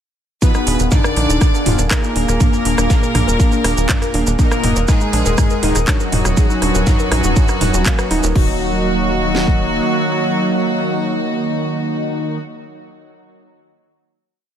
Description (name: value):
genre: melodic techno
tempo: 121 BPM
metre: 4/4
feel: straight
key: Eb harmonic minor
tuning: A4 = 440 Hz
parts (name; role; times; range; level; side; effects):
- soft supersaw; melody; 0.4-12.4 s; Gb2 to D4; -20 LUFS; equal; sidechain pumping, tape echo
- clear studio violin section; second line; 0.4-12.4 s; Gb4 to D5; -24 LUFS; left 1 dB; sidechain pumping, ping-pong delay
- warm analog pad; sustained chords; 0.4-12.4 s; Bb3 to Eb6; -28 LUFS; right 1 dB; chorus, sidechain pumping
- woody wave-folded pluck; arpeggios; 0.4-8.6 s; Bb3 to Cb5; -24 LUFS; equal; chorus, sidechain pumping, ping-pong delay
- analog synth brass; stabs; 0.4-12.4 s; Bb2 to Ab4; -23 LUFS; equal; chorus, sidechain pumping, ping-pong delay
- dusty soul sampler-style drum kit; drums; 0.4-8.3 s; hi-hat, ride cymbal, snare drum; -32 LUFS; right 2 dB; none
- house drum kit; drums; 0.4-9.6 s; kick drum, snare drum; -15 LUFS; equal; none
- maracas; percussion; 0.4-8.3 s; none; -26 LUFS; right 5 dB; none
- house drum kit; drums; 0.5-8.5 s; crash cymbal, handclaps, hi-hat, rim click, toms; -22 LUFS; right 1 dB; none
- tight sequencer bass; bass; 0.7-9.8 s; Eb1 to Bb1; -19 LUFS; equal; sidechain pumping
room: little or no reverb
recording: none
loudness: -14 LUFS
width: side -9 dB against mid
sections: 0.4-8.4 drop; 8.4-12.3 final chord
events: drop 0.4-8.4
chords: 0.4 Fm7b5/Eb; 2.4 Bb7/Eb; 4.4 Ebm; 6.4 Abm7/Eb; 8.4 Ebm